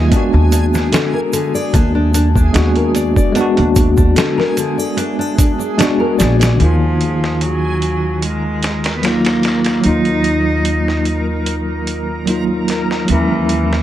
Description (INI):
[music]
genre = trip hop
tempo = 74 BPM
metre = 4/4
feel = straight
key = Eb harmonic minor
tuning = A4 = 441 Hz
[part]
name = bell-like tine electric piano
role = accompaniment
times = 0.0-13.8 s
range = Eb3 to Gb4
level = -17 LUFS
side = equal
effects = medium stereo tremolo, harmonic tremolo, vintage 12-bit sampler grit, tape echo
[part]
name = nylon-string guitar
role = arpeggios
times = 0.0-6.6 s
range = D3 to Eb5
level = -20 LUFS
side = left 3 dB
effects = ping-pong delay
[part]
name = upright bass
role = bass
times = 0.0-13.8 s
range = Bb1 to Eb2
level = -17 LUFS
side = equal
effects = none
[part]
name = backwards swelling texture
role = texture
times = 0.0-13.8 s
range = Ab4 to Bb4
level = -28 LUFS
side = right 1 dB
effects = built-in reverb
[part]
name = boom bap sampler-style drum kit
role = drums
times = 0.1-13.8 s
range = hi-hat, kick drum, snare drum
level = -18 LUFS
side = equal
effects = high-pass filter on hats, high-pass filter on snare, high-pass filter on kick
[part]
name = tube shaker and triangle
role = percussion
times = 0.1-6.6 s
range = none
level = -30 LUFS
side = right 4 dB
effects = none
[part]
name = bright cello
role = melody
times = 6.6-13.8 s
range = E3 to Eb4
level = -20 LUFS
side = equal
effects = vintage 12-bit sampler grit, dub echo
[sound]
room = light reverb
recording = dark, warm production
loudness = -13 LUFS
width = side -12 dB against mid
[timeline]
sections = 0.0-6.6 A section; 6.6-13.8 B section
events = none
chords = 0.1 Bb7b9b13/Eb; 6.6 Ebmadd9; 13.1 E69/Eb